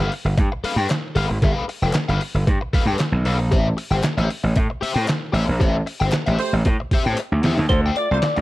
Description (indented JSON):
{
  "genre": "funk",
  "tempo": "115 BPM",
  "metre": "4/4",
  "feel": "straight",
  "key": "unclear",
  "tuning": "A4 = 440 Hz",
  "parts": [
    { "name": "crunchy overdriven guitar", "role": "accompaniment", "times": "0.0-8.4 s", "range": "G4 to G5", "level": "-26 LUFS", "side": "left 4 dB", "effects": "wah" },
    { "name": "gritty slap bass", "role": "bass", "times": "0.0-8.4 s", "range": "F1 to A2", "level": "-20 LUFS", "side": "equal", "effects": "overdrive" },
    { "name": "trip hop sampler-style drum kit", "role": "drums", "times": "0.0-8.4 s", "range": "handclaps, hi-hat, kick drum, snare drum", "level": "-23 LUFS", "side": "equal", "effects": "none" },
    { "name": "group handclap", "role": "percussion", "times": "0.9-7.3 s", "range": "none", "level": "-34 LUFS", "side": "left 4 dB", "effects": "none" },
    { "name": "warm horn section", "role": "second line", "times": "6.4-8.2 s", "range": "A3 to D5", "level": "-26 LUFS", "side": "right 4 dB", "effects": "none" },
    { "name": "percussive tonewheel organ", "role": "melody", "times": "7.7-8.4 s", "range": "C5 to D5", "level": "-22 LUFS", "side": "left 2 dB", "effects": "slow rotary speaker" }
  ],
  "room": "little or no reverb",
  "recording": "dry, close 1970s-style studio recording",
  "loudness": "-18 LUFS",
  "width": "side -17 dB against mid",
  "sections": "0.0-7.7 A section",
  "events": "band accent 5.6-7.7; drum fill 7.2-7.7",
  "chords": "0.0 G9; 3.5 Am7; 7.7 Dm7",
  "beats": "0.38 0.90 | 1.42 1.95 2.47 2.99 | 3.52 4.04 4.56 5.08 | 5.61 6.13 6.66 7.18 | 7.70 8.22"
}